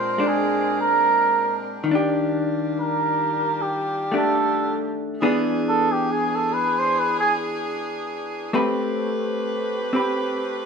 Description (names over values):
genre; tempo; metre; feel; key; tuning
jazz ballad; 72 BPM; 4/4; swing 68% on 8ths; unclear; A4 = 440 Hz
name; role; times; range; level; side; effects
trumpet with cup mute; melody; 0.0-7.4 s; G4 to C5; -21 LUFS; right 2 dB; none
vintage hollow-body jazz guitar; accompaniment; 0.0-10.7 s; Bb2 to B4; -24 LUFS; left 1 dB; none
warm saxophone section; sustained chords; 0.0-10.7 s; E3 to G5; -29 LUFS; equal; none
room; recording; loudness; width
moderate large studio reverb, RT60 1.4 s; minimal, uncompressed stereo recording; -20 LUFS; side -5 dB against mid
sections
0.0-10.7 A section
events
muted trumpet solo 0.0-10.7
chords
0.0 Bb13; 1.9 Ebmaj9#11; 5.2 E7; 8.5 Am9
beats
0.18 1.02 | 1.85 2.69 3.53 4.36 | 5.20 6.03 6.86 7.70 | 8.53 9.36 10.19